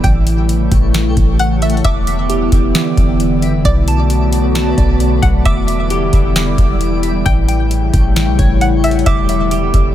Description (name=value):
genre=hip hop, atmospheric cloud-rap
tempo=133 BPM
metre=4/4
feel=half-time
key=E dorian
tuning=A4 = 440 Hz
part: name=string-like resonator pluck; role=melody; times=0.0-9.9 s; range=D5 to G5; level=-24 LUFS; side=equal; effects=chorus, ping-pong delay
part: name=warbly tape-like pad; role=sustained chords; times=0.0-9.9 s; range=C#3 to F#4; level=-17 LUFS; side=left 1 dB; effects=chorus, built-in reverb, sidechain pumping
part: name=clean 808-style bass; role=bass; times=0.0-9.9 s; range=E1 to B1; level=-15 LUFS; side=equal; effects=none
part: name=booming analog drum machine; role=drums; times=0.0-9.9 s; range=hi-hat, kick drum, snare drum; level=-16 LUFS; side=equal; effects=none
part: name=twinkling granular texture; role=texture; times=0.0-9.9 s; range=G3 to D5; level=-26 LUFS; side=equal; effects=built-in reverb
part: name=glassy digital keys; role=arpeggios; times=1.9-9.9 s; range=G4 to D6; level=-22 LUFS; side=right 2 dB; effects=chorus, ping-pong delay
room=little or no reverb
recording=none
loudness=-11 LUFS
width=side -12 dB against mid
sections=0.0-1.8 A section; 1.8-9.9 B section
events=none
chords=0.0 A7; 1.8 Em7; 3.6 Bm7; 5.5 Em7; 7.3 A7; 9.1 Em7